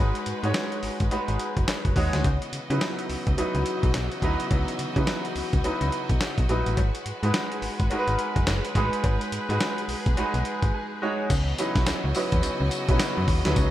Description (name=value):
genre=R&B, new jack swing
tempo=106 BPM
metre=4/4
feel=swing 61% on 16ths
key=C# minor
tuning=A4 = 440 Hz
part: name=clear baby grand piano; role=accompaniment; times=0.0-13.7 s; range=F#3 to G#5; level=-28 LUFS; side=right 1 dB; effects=lush chorus
part: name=clear studio string section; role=sustained chords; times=0.0-13.7 s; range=C#3 to D#5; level=-34 LUFS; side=equal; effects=none
part: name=slap-like FM bass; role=bass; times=0.0-13.7 s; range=F#1 to C#3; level=-26 LUFS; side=equal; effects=none
part: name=dusty soul sampler-style drum kit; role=drums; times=0.2-13.7 s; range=crash cymbal, handclaps, hi-hat, kick drum, snare drum, tambourine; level=-27 LUFS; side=equal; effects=none
part: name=cowbell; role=percussion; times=0.5-13.7 s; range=none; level=-42 LUFS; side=left 5 dB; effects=none
room=light reverb, digital ambience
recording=bright 1980s-style digital production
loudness=-23 LUFS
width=side -13 dB against mid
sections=0.0-11.3 A section; 11.3-13.7 B section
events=grand piano fill 10.5-11.3; break 10.7-11.3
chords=0.0 G#m7; 2.2 C#m11; 6.8 G#m7; 11.3 C#m11